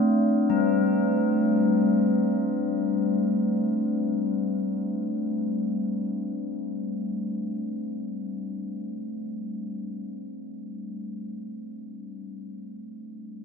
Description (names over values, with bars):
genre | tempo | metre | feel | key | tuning
world meditative, free-time meditation music | free time | none | none | unclear | A4 = 440 Hz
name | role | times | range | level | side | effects
bronze singing bowl | solo | 0.0-9.2 s | G3 to D4 | -25 LUFS | left 1 dB | none
room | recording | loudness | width
wet concert hall reverb, RT60 2.3 s | dark, warm production | -24 LUFS | side -5 dB against mid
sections
0.0-13.4 A section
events
none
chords
none